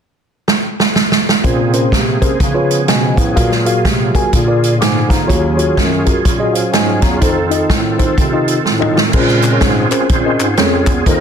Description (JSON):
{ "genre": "uptempo gospel", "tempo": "125 BPM", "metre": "4/4", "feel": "swing 61% on 8ths", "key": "Bb minor", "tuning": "A4 = 440 Hz", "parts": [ { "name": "swinging big-band drum kit", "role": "drums", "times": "0.5-11.2 s", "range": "crash cymbal, hi-hat, kick drum, snare drum, toms", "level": "-14 LUFS", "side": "right 1 dB", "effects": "none" }, { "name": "mellow tine electric piano", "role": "accompaniment", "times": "1.4-11.2 s", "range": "Bb2 to D6", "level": "-16 LUFS", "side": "left 2 dB", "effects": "medium stereo tremolo" }, { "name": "bright tonewheel organ", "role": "sustained chords", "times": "1.4-11.2 s", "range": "C3 to C5", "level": "-18 LUFS", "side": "right 3 dB", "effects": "fast rotary speaker, chorus vibrato" }, { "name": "mellow bass clarinet", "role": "bass", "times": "1.4-11.2 s", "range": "Eb2 to Db3", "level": "-19 LUFS", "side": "equal", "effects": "none" }, { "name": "group handclap", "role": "percussion", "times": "9.4-11.0 s", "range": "none", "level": "-23 LUFS", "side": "left 6 dB", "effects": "none" } ], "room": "light reverb, studio reverb", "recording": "dense, heavily limited modern master", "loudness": "-11 LUFS", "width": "side -7 dB against mid", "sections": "0.0-1.4 A section; 1.4-9.1 B section; 9.1-11.2 C section", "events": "drum fill 0.5-1.4, 8.7-9.1; tonewheel organ solo 9.1-11.2", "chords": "0.0 N.C.; 1.4 Bbm9; 2.4 Db7; 3.4 Gbmaj9/Bb; 4.3 Bb7; 5.3 Ebm11; 7.2 F7; 9.1 Bbm9", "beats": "0.00 0.48 0.96 | 1.44 1.93 2.41 2.89 | 3.37 3.85 4.33 4.81 | 5.29 5.78 6.26 6.74 | 7.22 7.70 8.18 8.66 | 9.14 9.62 10.11 10.59 | 11.06" }